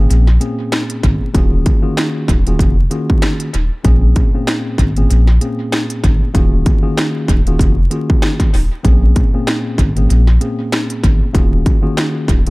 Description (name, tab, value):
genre	hip hop, boom-bap hip-hop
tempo	96 BPM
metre	4/4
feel	swing 56% on 16ths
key	Bb minor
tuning	A4 = 436 Hz
part	mellow tine electric piano	accompaniment	0.0-12.5 s	Bb2 to Ab4	-20 LUFS	equal	medium stereo tremolo, cassette tape, high-pass filter, low-pass filter
part	saturated sub bass	bass	0.0-12.5 s	Eb1 to Bb1	-13 LUFS	equal	none
part	industrial drum kit	drums	0.1-12.5 s	hi-hat, kick drum, snare drum	-14 LUFS	equal	distortion, tape echo
room	little or no reverb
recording	echo-heavy mix, vinyl crackle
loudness	-12 LUFS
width	side -23 dB against mid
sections	0.0-12.5 A section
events	none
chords	0.0 Bbm9; 1.3 Ebm11; 3.8 Bbm9; 6.3 Ebm11; 8.8 Bbm9; 11.3 Ebm11